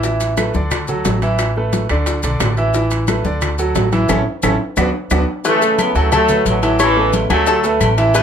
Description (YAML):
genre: latin, salsa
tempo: 178 BPM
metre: 4/4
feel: straight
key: A major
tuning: A4 = 440 Hz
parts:
  - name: bright concert grand piano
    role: accompaniment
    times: 0.0-8.2 s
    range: D3 to F#5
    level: -19 LUFS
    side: right 2 dB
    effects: none
  - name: upright bass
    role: bass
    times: 0.0-8.2 s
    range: A1 to D2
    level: -19 LUFS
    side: equal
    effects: none
  - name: bongos and cowbell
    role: percussion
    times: 0.0-8.2 s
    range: none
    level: -26 LUFS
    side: left 6 dB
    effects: none
  - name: congas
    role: percussion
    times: 0.0-8.2 s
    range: none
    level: -24 LUFS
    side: left 2 dB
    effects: none
  - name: maracas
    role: percussion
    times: 0.0-8.2 s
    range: none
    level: -29 LUFS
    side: left 5 dB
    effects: none
  - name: timbales and agogo bells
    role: percussion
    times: 0.2-8.2 s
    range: none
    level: -24 LUFS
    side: right 2 dB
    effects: none
  - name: claves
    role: percussion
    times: 0.4-8.0 s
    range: none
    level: -26 LUFS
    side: left 3 dB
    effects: none
  - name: bright trombone section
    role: melody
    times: 5.5-8.2 s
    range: A2 to B3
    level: -16 LUFS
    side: equal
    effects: none
  - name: bluegrass banjo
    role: second line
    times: 5.5-8.2 s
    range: G#4 to C#5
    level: -19 LUFS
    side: left 4 dB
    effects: none
room: moderate studio ambience, RT60 0.5 s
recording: none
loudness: -14 LUFS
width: side -8 dB against mid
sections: 0.0-5.4 A section; 5.4-8.2 B section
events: band accent 4.1-5.4; drum fill 4.8-5.4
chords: 0.0 Asus2; 0.7 D; 1.4 Asus2; 3.4 D; 4.1 A; 4.8 D6; 5.4 Aadd9; 6.1 D6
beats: | 0.04 0.38 0.71 1.05 | 1.39 1.73 2.07 2.41 | 2.75 3.08 3.42 3.76 | 4.10 4.44 4.77 5.11 | 5.45 5.79 6.12 6.46 | 6.80 7.13 7.47 7.81 | 8.14